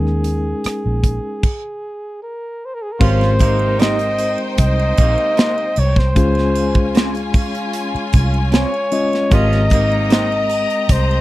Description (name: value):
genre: lush 1970s-style soul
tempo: 76 BPM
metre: 4/4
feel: straight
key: Ab major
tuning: A4 = 440 Hz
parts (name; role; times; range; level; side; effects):
- mellow flugelhorn; melody; 0.0-11.2 s; Ab4 to Eb5; -20 LUFS; equal; slapback echo
- mellow reed electric piano; accompaniment; 0.0-11.2 s; Ab3 to Eb5; -22 LUFS; left 3 dB; fast tremolo
- vintage muted fingered electric bass; bass; 0.0-11.2 s; Ab1 to Eb2; -18 LUFS; equal; none
- modern studio drum kit; drums; 0.1-11.1 s; crash cymbal, hi-hat, kick drum, rim click, snare drum; -15 LUFS; equal; none
- bright studio string section; second line; 3.0-11.2 s; Db4 to Bb5; -26 LUFS; left 1 dB; none
- warm horn section; stabs; 3.0-10.5 s; C3 to F4; -25 LUFS; right 6 dB; none
- triangle; percussion; 3.0-11.2 s; none; -37 LUFS; right 20 dB; none
- electric guitar through a small old amp; riff; 3.8-10.3 s; Bb3 to C5; -23 LUFS; right 2 dB; wide subtle chorus
room: little or no reverb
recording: dry, close 1970s-style studio recording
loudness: -14 LUFS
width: side -16 dB against mid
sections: 0.0-3.0 A section; 3.0-11.2 B section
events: stop 1.4-3.0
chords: 0.0 Eb7sus4; 3.0 Abmaj9; 6.2 Dbmaj7; 9.3 Abmaj9